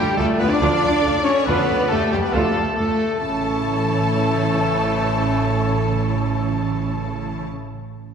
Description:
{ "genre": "cinematic, heroic adventure film score", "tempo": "139 BPM", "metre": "4/4", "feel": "straight", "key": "A mixolydian", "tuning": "A4 = 440 Hz", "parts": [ { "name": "rich symphonic violin section", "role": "melody", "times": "0.0-7.4 s", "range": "G4 to A5", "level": "-29 LUFS", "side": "left 2 dB", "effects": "none" }, { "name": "bright oboe", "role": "second line", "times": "0.0-7.4 s", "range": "G4 to D5", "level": "-29 LUFS", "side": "right 1 dB", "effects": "none" }, { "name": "mellow clarinet", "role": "second line", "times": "0.0-3.0 s", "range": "F4 to A4", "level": "-28 LUFS", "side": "right 1 dB", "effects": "none" }, { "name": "silver concert flute", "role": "second line", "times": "0.0-7.4 s", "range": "G5 to D6", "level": "-30 LUFS", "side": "left 1 dB", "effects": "none" }, { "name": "warm symphonic violin section", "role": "second line", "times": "0.0-7.4 s", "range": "G4 to A5", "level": "-31 LUFS", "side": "left 3 dB", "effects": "none" }, { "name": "warm studio viola section", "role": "accompaniment", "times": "0.0-7.4 s", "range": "E4 to D5", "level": "-29 LUFS", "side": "equal", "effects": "none" }, { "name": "mellow French horn section", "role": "sustained chords", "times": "0.0-7.4 s", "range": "G3 to D4", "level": "-24 LUFS", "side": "left 3 dB", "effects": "none" }, { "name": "rich symphonic cello section", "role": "bass", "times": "0.0-7.4 s", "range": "C#3 to D4", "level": "-26 LUFS", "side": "right 2 dB", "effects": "none" }, { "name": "rich symphonic double bass section", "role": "bass", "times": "0.0-7.4 s", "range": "A1 to D2", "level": "-24 LUFS", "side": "right 3 dB", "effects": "none" }, { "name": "mellow trombone section", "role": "sustained chords", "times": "0.6-7.4 s", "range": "E3 to D4", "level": "-29 LUFS", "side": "right 2 dB", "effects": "none" } ], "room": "wet scoring stage reverb, RT60 1.9 s", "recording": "heard from further back in the room", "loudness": "-17 LUFS", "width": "side -7 dB against mid", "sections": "0.0-3.2 A section; 3.2-6.7 B section", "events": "none", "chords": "0.0 Dm; 3.2 A" }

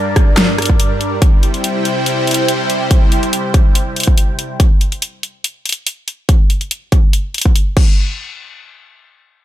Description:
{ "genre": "heavy wobble dubstep", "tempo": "142 BPM", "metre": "4/4", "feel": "half-time", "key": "unclear", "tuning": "A4 = 439 Hz", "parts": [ { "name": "supersaw pad", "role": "sustained chords", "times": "0.0-4.6 s", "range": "G2 to G5", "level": "-17 LUFS", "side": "equal", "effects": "phaser, sidechain pumping" }, { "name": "dubstep drum kit", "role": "drums", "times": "0.2-7.9 s", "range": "crash cymbal, hi-hat, rim click, snare drum", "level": "-18 LUFS", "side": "left 1 dB", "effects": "none" }, { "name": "electronic kick drum", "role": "drums", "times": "0.2-7.9 s", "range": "none", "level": "-11 LUFS", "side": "equal", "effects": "overdrive" } ], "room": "light reverb", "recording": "none", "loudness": "-12 LUFS", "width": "side -13 dB against mid", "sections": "0.0-8.0 A section; 8.0-9.4 B section", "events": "none", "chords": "0.0 Gm; 1.2 C; 7.8 N.C." }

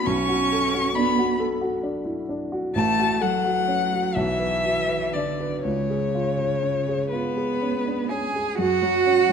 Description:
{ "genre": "classical, slow romantic movement for piano trio", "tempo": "40-45 BPM (dotted quarters)", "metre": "6/8", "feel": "rubato", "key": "F# minor", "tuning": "A4 = 440 Hz", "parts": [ { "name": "warm violin", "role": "melody", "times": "0.0-9.3 s", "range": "B4 to C#6", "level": "-25 LUFS", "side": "left 5 dB", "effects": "none" }, { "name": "rich cello", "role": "second line", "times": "0.0-9.3 s", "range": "C#3 to G#4", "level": "-25 LUFS", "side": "right 7 dB", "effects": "none" }, { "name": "dark grand piano", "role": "accompaniment", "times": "0.0-9.3 s", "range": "A1 to B4", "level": "-26 LUFS", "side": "left 1 dB", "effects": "none" } ], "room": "moderate scoring stage reverb, RT60 1.9 s", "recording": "none", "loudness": "-21 LUFS", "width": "side -6 dB against mid", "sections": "0.0-8.6 A section", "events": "none", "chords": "0.1 Bm7; 2.8 F#m/A; 4.2 Bm; 5.7 C#; 8.6 F#5" }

